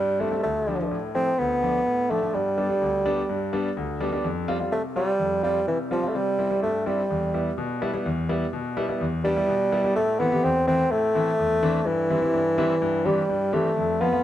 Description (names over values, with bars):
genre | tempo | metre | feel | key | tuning
pop | 126 BPM | 4/4 | straight | A minor | A4 = 438 Hz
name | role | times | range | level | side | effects
mellow bassoon | melody | 0.0-14.2 s | E3 to C4 | -23 LUFS | equal | none
clear concert grand piano | accompaniment | 0.0-14.2 s | D2 to G4 | -26 LUFS | left 2 dB | none
room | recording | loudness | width
moderate plate reverb, RT60 2.8 s | none | -22 LUFS | side -12 dB against mid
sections
0.0-8.1 A section; 8.1-10.0 B section; 10.0-14.2 C section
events
none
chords
0.4 Dm; 2.3 G; 4.2 Fsus2; 6.2 C; 7.1 Em; 10.0 Am; 11.9 C/G